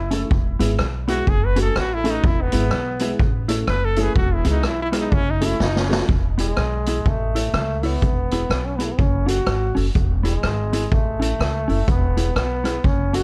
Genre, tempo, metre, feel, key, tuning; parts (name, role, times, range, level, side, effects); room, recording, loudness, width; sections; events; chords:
ska; 124 BPM; 4/4; swing 61% on 8ths; E major; A4 = 442 Hz
brilliant trombone; melody; 0.0-6.0 s; B3 to B4; -28 LUFS; equal; dub echo, plate reverb
upright bass; bass; 0.0-13.2 s; E1 to C#2; -25 LUFS; equal
mellow electric guitar; accompaniment; 0.1-13.2 s; B3 to C#5; -28 LUFS; equal; plate reverb
dark upright piano; stabs; 0.1-6.0 s; G#3 to A4; -30 LUFS; equal; plate reverb
street-band drum kit; drums; 0.1-13.2 s; hi-hat, kick drum, rim click, snare drum; -25 LUFS; equal
bright trombone; melody; 6.4-13.2 s; G#3 to F#4; -28 LUFS; equal; dub echo, plate reverb
little or no reverb; dark, warm production; -20 LUFS; mono
0.0-6.1 A section; 6.1-13.2 B section
trombone solo 0.0-6.1; drum fill 5.6-6.1
0.3 E; 1.3 F#m; 2.2 E; 3.2 A; 4.2 E; 5.1 F#m; 6.1 E; 7.1 A; 8.0 E; 9.0 F#m; 10.0 E; 10.9 A; 11.9 E